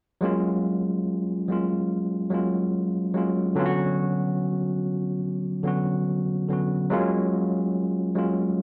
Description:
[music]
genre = hip hop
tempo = 72 BPM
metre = 4/4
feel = swing 62% on 16ths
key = F# major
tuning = A4 = 436 Hz
[part]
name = tine electric piano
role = accompaniment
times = 0.2-8.6 s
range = D3 to F#4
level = -25 LUFS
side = equal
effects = overdrive, low-pass filter
[sound]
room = moderate spring reverb, RT60 1.4 s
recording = none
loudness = -25 LUFS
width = mono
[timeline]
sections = 0.2-8.6 A section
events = none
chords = 0.2 F#maj9; 3.6 Bmadd9; 6.9 F#maj9

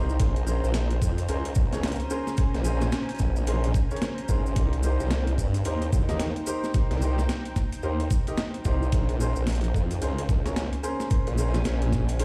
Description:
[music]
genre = glitch hop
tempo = 110 BPM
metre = 4/4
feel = swing 61% on 16ths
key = unclear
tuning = A4 = 440 Hz
[part]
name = warm concert grand piano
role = stabs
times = 0.0-12.2 s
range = Db4 to Eb5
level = -35 LUFS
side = equal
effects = sidechain pumping, delay
[part]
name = formant-sweep wobble bass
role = bass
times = 0.0-12.2 s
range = Ab1 to G2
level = -28 LUFS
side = equal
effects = chorus, overdrive
[part]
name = granular cloud pad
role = texture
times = 0.0-12.2 s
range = Db4 to Bb5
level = -40 LUFS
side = equal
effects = built-in reverb, sidechain pumping
[part]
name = maracas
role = percussion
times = 0.1-12.2 s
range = none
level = -45 LUFS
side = equal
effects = none
[part]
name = boom bap sampler-style drum kit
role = drums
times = 0.2-12.2 s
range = hi-hat, snare drum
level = -36 LUFS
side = equal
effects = overdrive
[part]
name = electronic kick drum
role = drums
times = 0.2-12.1 s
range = none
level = -27 LUFS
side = equal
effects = none
[sound]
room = little or no reverb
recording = played on a big sound system in a bare room, large studio reverb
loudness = -26 LUFS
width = mono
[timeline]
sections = 0.0-12.2 A section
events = none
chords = 0.2 Bbm9; 4.6 Cm7; 8.9 Bbm9

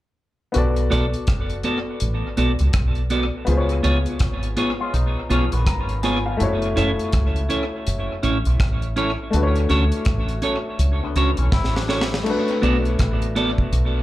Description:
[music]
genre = lovers rock reggae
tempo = 82 BPM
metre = 4/4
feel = swing 61% on 16ths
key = unclear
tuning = A4 = 440 Hz
[part]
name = warm baby grand piano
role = accompaniment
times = 0.5-14.0 s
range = A3 to Bb5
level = -26 LUFS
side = left 3 dB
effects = slapback echo
[part]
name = deep reggae drum kit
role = drums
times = 0.5-13.9 s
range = crash cymbal, hi-hat, kick drum, rim click, snare drum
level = -24 LUFS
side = equal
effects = dub echo
[part]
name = deep dub fingered electric bass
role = bass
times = 0.6-14.0 s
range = F#1 to D2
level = -21 LUFS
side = equal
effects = none
[part]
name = clean electric guitar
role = stabs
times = 0.9-13.5 s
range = B3 to D5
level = -24 LUFS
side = right 1 dB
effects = wide subtle chorus, dub echo, slapback echo
[part]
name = electric guitar with an envelope filter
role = arpeggios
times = 4.8-6.4, 11.0-12.2 s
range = D3 to E#4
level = -32 LUFS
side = left 5 dB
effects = dub echo, slapback echo
[sound]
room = little or no reverb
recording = live gig heard through the venue's PA, club reverb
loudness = -18 LUFS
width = side -15 dB against mid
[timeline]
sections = 0.5-12.3 A section; 12.3-14.0 B section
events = drum fill 11.5-12.3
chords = 0.5 Bm7; 3.5 C#7; 6.4 F#m7; 9.3 Dmaj7; 12.3 Bm7

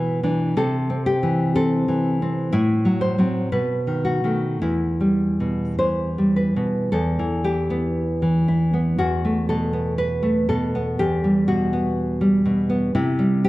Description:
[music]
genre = romantic piece for solo classical guitar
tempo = 51-62 BPM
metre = 2/4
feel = rubato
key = E minor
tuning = A4 = 440 Hz
[part]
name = nylon-string guitar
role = solo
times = 0.0-13.5 s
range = E2 to C5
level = -19 LUFS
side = equal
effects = none
[sound]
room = moderate recital hall reverb, RT60 1.6 s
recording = dark, warm production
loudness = -19 LUFS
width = side -18 dB against mid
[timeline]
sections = 0.0-6.9 A section; 6.9-13.5 B section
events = none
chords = 0.0 E5/B; 0.6 Am/C; 2.5 F#m7b5/A; 3.5 B7; 4.6 Em; 9.0 Esus24; 11.0 Em; 13.0 C5

